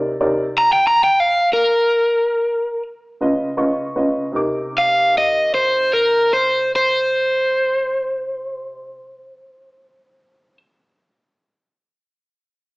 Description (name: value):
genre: blues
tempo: 50-65 BPM (dotted quarters)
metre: 12/8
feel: straight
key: C minor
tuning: A4 = 440 Hz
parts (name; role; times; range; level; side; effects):
- warm upright piano; accompaniment; 0.0-8.9 s; C3 to D6; -20 LUFS; equal; none
- overdriven semi-hollow guitar; melody; 0.6-10.6 s; Bb4 to Bb5; -15 LUFS; equal; none
room: wet large studio reverb, RT60 1.3 s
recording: band playing live in one room, small speaker sound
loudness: -15 LUFS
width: side -27 dB against mid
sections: 0.0-4.3 A section; 4.3-9.1 B section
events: slowing down 0.0-4.3; upright piano fill 3.2-4.3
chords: 0.0 Cm7; 3.2 Db7; 4.3 Cm7